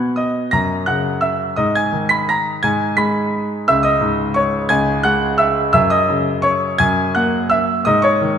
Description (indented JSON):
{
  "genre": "classical, piano waltz",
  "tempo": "171 BPM",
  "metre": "3/4",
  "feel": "uneven beats, rubato",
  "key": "unclear",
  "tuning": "A4 = 440 Hz",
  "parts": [
    { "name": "clear concert grand piano", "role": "solo", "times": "0.0-8.4 s", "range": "C#2 to B6", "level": "-14 LUFS", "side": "equal", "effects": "none" }
  ],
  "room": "moderate concert hall reverb, RT60 2.0 s",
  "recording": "none",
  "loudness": "-14 LUFS",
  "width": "side -8 dB against mid",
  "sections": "0.0-8.4 A section",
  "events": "none",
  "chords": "0.0 B; 0.5 F#7; 1.6 G#m; 3.7 C#m; 5.8 F#7; 7.9 G#5"
}